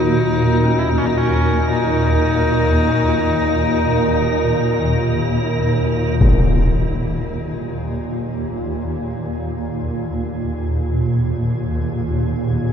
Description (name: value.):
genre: dark ambient drone.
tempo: free time.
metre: none.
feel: none.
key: unclear.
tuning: A4 = 442 Hz.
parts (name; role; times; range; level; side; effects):
clear horsehead fiddle; melody; 0.0-5.0 s; Db4 to Fb4; -22 LUFS; left 2 dB; ping-pong delay.
dark analog pad; sustained chords; 0.0-6.2 s; Eb4 to Db5; -27 LUFS; left 1 dB; none.
swarming drone; drone; 0.0-12.7 s; Eb2 to Bb2; -18 LUFS; equal; built-in reverb.
icy glass pad; texture; 0.0-12.7 s; Ab4 to Bb4; -26 LUFS; right 4 dB; chorus, built-in reverb.
gamelan-type bronze metallophone; arpeggios; 0.6-12.7 s; Gb3 to Bb4; -36 LUFS; right 2 dB; none.
impact; percussion; 6.2-6.4 s; none; -17 LUFS; left 1 dB; low-pass filter on sfx.
room: wet huge ambient reverb, RT60 7.1 s.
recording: dreamy mix soaked in reverb.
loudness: -16 LUFS.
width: side -8 dB against mid.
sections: 0.0-6.2 A section; 6.2-12.7 B section.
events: none.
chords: 0.0 Ebm.